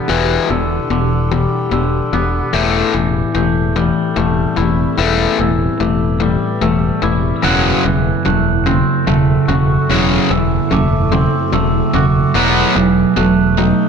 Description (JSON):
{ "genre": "post-rock", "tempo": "49 BPM (dotted quarters)", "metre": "6/8", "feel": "straight", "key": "unclear", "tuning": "A4 = 440 Hz", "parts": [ { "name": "ethereal airy pad", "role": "sustained chords", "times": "0.0-13.9 s", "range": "E3 to B4", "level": "-25 LUFS", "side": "right 2 dB", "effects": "ensemble chorus, built-in reverb, phaser" }, { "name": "twangy electric guitar", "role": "arpeggios", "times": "0.0-13.9 s", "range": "E2 to F#4", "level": "-21 LUFS", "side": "left 2 dB", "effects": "slapback echo" }, { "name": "cranked stack guitar", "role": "riff", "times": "0.0-13.9 s", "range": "E2 to B3", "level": "-16 LUFS", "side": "left 6 dB", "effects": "overdrive, spring reverb" }, { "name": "fingered electric bass", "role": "bass", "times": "0.1-13.7 s", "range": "E1", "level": "-19 LUFS", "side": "right 1 dB", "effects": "none" }, { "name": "glockenspiel with rubber mallets", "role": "arpeggios", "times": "0.5-13.9 s", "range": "D6 to G6", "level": "-24 LUFS", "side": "right 7 dB", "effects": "slapback echo" }, { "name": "sludgy distorted guitar", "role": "riff", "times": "7.4-13.9 s", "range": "F#2 to B3", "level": "-17 LUFS", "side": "right 15 dB", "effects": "overdrive" } ], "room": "light reverb", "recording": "dark, warm production", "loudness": "-12 LUFS", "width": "side -6 dB against mid", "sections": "0.0-13.9 A section", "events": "build-up 0.0-13.9", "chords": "0.0 Em7; 2.5 Am7/E; 7.4 F#m7b5/E; 12.4 B7/E" }